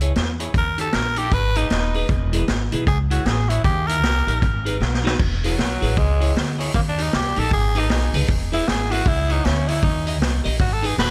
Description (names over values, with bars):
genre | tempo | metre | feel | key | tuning
ska | 155 BPM | 4/4 | swing 61% on 8ths | E major | A4 = 440 Hz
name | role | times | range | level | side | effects
semi-hollow electric guitar | accompaniment | 0.0-10.9 s | D#4 to D#5 | -31 LUFS | equal | phaser, tape echo
upright bass | bass | 0.0-11.1 s | D#1 to E2 | -24 LUFS | equal | none
street-band drum kit | drums | 0.0-11.1 s | crash cymbal, hi-hat, kick drum, snare drum | -25 LUFS | equal | none
breathy tenor saxophone | melody | 0.6-11.1 s | F#3 to B4 | -27 LUFS | equal | tape echo
room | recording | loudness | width
studio ambience | none | -20 LUFS | mono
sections
0.0-5.2 A section; 5.2-11.1 A section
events
tenor saxophone solo 0.0-5.2, 5.2-11.1; drum fill 4.8-5.2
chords
0.0 C#m; 0.5 D#; 1.3 G#m; 2.1 E; 2.9 C#m; 3.6 D#; 4.4 G#m; 4.8 B; 5.2 E; 6.0 C#m; 6.7 D#; 7.5 G#m; 8.3 E; 9.1 C#m; 9.8 D#; 10.6 G#m